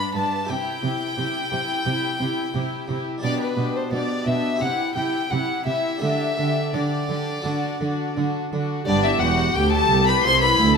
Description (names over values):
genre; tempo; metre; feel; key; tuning
classical, baroque-style concerto movement with solo episodes; 87 BPM; 4/4; straight; G major; A4 = 439 Hz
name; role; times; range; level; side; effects
rich chamber violin section; melody; 0.0-10.8 s; F#4 to C6; -28 LUFS; left 7 dB; none
rich violin; melody; 0.0-10.8 s; B4 to C6; -26 LUFS; left 1 dB; none
dark studio violin section; second line; 0.0-10.8 s; D4 to B5; -29 LUFS; left 3 dB; none
harpsichord; accompaniment; 0.0-10.8 s; C2 to D5; -30 LUFS; right 2 dB; none
rich studio viola section; accompaniment; 0.0-10.8 s; D4 to G4; -28 LUFS; left 2 dB; none
dark chamber cello section; bass; 0.2-10.8 s; C2 to D3; -26 LUFS; right 5 dB; none
warm studio double bass section; bass; 8.9-10.8 s; E1 to D2; -25 LUFS; right 4 dB; none
room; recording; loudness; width
moderate recital hall reverb, RT60 1.4 s; none; -20 LUFS; side -5 dB against mid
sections
0.0-8.9 A section; 8.9-10.8 B section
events
none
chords
0.5 C; 3.2 G/B; 4.6 C; 6.0 Dsus4; 7.5 D; 8.9 G; 10.3 C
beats
| 0.49 1.18 1.86 2.54 | 3.23 3.92 4.61 5.31 | 6.02 6.74 7.46 8.17 | 8.87 9.56 10.25